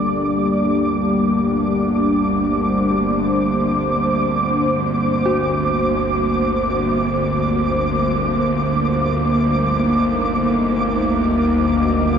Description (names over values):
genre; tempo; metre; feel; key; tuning
dark ambient drone; free time; none; none; G harmonic minor; A4 = 441 Hz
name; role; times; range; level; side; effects
dark analog pad; sustained chords; 0.0-12.2 s; G3 to Eb5; -18 LUFS; equal; chorus
dark detuned synth bell; arpeggios; 0.0-12.2 s; F#4 to A4; -30 LUFS; left 2 dB; chorus, tape echo
bowed-like drone; drone; 0.0-12.2 s; G1 to D2; -23 LUFS; equal; built-in reverb
flickering grainy texture; texture; 0.0-12.2 s; D6; -23 LUFS; right 1 dB; built-in reverb
room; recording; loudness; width
wet huge ambient reverb, RT60 8.0 s; dark, warm production; -16 LUFS; side -7 dB against mid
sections
0.0-12.2 A section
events
fade-in on synth drone 0.0-12.2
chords
0.0 Gm; 9.1 Ebm